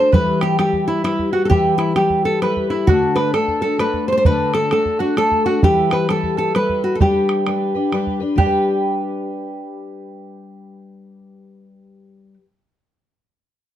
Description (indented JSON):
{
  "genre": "celtic folk, Celtic waltz",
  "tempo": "131 BPM",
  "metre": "3/4",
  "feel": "swing 62% on 8ths",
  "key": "G major",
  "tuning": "A4 = 440 Hz",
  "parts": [
    { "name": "nylon-string guitar", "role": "melody", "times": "0.0-12.3 s", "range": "E4 to C5", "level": "-19 LUFS", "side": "equal", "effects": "none" },
    { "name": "mandolin", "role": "second line", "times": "0.0-12.3 s", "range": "E4 to C5", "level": "-24 LUFS", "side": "right 6 dB", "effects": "none" },
    { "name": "fingerpicked twelve-string acoustic guitar", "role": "accompaniment", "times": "0.0-12.4 s", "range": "D3 to B4", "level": "-21 LUFS", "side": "left 4 dB", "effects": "none" },
    { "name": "bodhran", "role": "percussion", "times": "0.1-8.6 s", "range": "none", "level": "-20 LUFS", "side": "right 2 dB", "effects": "none" }
  ],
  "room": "light reverb",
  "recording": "dark, warm production",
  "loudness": "-15 LUFS",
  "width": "side -11 dB against mid",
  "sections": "0.0-8.4 A section; 8.4-11.1 B section",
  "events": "none",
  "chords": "0.1 Em; 2.9 D; 5.6 Em; 7.0 G"
}